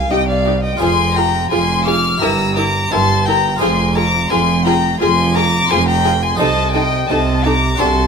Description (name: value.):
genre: classical, baroque-style concerto movement with solo episodes.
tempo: 86 BPM.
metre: 4/4.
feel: straight.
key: unclear.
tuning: A4 = 435 Hz.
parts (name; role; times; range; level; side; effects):
rich chamber violin section; melody; 0.0-8.1 s; F5 to F6; -19 LUFS; left 7 dB; none.
warm violin; melody; 0.0-8.1 s; D5 to D6; -20 LUFS; equal; none.
harpsichord; accompaniment; 0.0-8.1 s; C2 to C5; -26 LUFS; right 1 dB; none.
rich chamber cello section; bass; 0.0-8.1 s; C2 to C3; -19 LUFS; right 3 dB; none.
rich chamber double bass section; bass; 0.0-8.1 s; F1 to C2; -22 LUFS; right 3 dB; none.
warm chamber violin section; second line; 0.1-7.9 s; G4 to Bb4; -24 LUFS; left 2 dB; none.
rich studio viola section; accompaniment; 0.1-7.9 s; D4 to F4; -23 LUFS; equal; none.
room: moderate recital hall reverb, RT60 1.4 s.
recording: none.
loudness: -13 LUFS.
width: side -6 dB against mid.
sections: 0.0-8.1 A section.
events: none.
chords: 0.0 Cm; 0.8 Fm; 2.2 Edim/G; 3.6 Fm; 6.4 Adim/C.